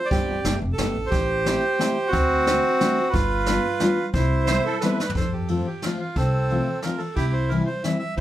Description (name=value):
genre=musette waltz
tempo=179 BPM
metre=3/4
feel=straight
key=C major, F major from 5.1 s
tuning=A4 = 440 Hz
part: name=bandoneon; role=melody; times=0.0-8.2 s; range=C4 to E5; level=-24 LUFS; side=right 2 dB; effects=none
part: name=fingerpicked steel-string acoustic guitar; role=accompaniment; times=0.1-8.0 s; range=E3 to G4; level=-26 LUFS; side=left 2 dB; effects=none
part: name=upright bass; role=bass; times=0.1-8.2 s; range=F1 to F2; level=-26 LUFS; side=equal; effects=none
part: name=jazz brush drum kit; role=drums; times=0.1-8.2 s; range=hi-hat, kick drum, ride cymbal, snare drum, toms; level=-28 LUFS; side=equal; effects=none
part: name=musette accordion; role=second line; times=4.5-5.1 s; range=A4 to C5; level=-26 LUFS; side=right 5 dB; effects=none
room=moderate studio reverb, RT60 0.5 s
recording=none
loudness=-20 LUFS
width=side -13 dB against mid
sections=0.0-5.1 A section; 5.1-8.2 B section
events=drum fill 5.0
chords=0.1 Gsus4; 0.4 Gadd9; 1.1 Am7; 2.1 D7; 3.1 G7; 4.1 Cmaj7; 5.1 F; 7.2 C